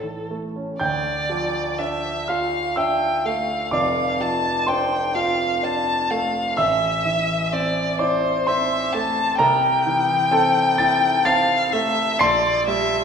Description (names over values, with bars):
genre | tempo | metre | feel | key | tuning
classical, romantic duo for violin and grand piano | 63 BPM | 3/4 | rubato | D minor | A4 = 441 Hz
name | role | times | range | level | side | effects
rich violin | melody | 0.0-13.0 s | A4 to A5 | -21 LUFS | left 3 dB | none
clear concert grand piano | accompaniment | 0.0-13.0 s | F1 to C7 | -22 LUFS | right 2 dB | none
room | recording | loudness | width
wet recital hall reverb, RT60 1.7 s | recorded in a church or concert hall | -18 LUFS | side -6 dB against mid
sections
0.8-13.0 A section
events
none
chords
0.0 A; 0.8 Dm; 3.7 Dm/F; 6.6 Am; 9.4 Am/C; 12.2 Gm/Bb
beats
| 0.81 1.79 2.77 | 3.72 4.67 5.62 | 6.57 7.51 8.47 | 9.40 10.33 11.27 | 12.21